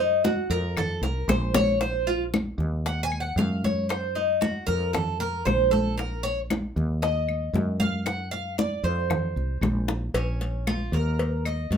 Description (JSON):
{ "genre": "latin, Cuban son and guajira", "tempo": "115 BPM", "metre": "4/4", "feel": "straight", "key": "Bb minor", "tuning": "A4 = 440 Hz", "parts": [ { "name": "Cuban tres", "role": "arpeggios", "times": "0.0-11.8 s", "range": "Db4 to Ab5", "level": "-27 LUFS", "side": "equal", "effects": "none" }, { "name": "woody fretless electric bass", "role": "bass", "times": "0.0-11.8 s", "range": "Bb1 to Gb2", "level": "-28 LUFS", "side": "equal", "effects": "none" }, { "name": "bongos and cowbell", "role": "percussion", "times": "0.2-11.8 s", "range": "none", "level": "-31 LUFS", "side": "left 3 dB", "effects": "none" }, { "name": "congas", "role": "percussion", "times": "0.2-11.8 s", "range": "none", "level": "-29 LUFS", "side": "equal", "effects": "none" }, { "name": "claves", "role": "percussion", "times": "0.8-11.7 s", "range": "none", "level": "-36 LUFS", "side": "left 4 dB", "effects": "none" } ], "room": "wet small room reverb, RT60 0.5 s", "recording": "minimal, uncompressed stereo recording", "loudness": "-23 LUFS", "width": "side -8 dB against mid", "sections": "0.0-10.2 A section; 10.2-11.8 B section", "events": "Cuban tres solo 0.0-10.2; drum fill 1.0-1.8, 9.9", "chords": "0.0 Ebmadd9; 0.8 F5; 1.8 Bbsus24; 2.9 Ebm; 3.9 Ebm69; 4.9 Fadd11; 6.0 Bbmadd11; 7.0 Ebm; 8.1 D7#9; 9.1 F5; 10.2 Bbm; 11.2 Eb5", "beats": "0.25 0.77 1.29 | 1.81 2.34 2.86 3.38 | 3.90 4.42 4.94 5.46 | 5.98 6.50 7.03 7.55 | 8.07 8.59 9.11 9.63 | 10.15 10.67 11.19 11.71" }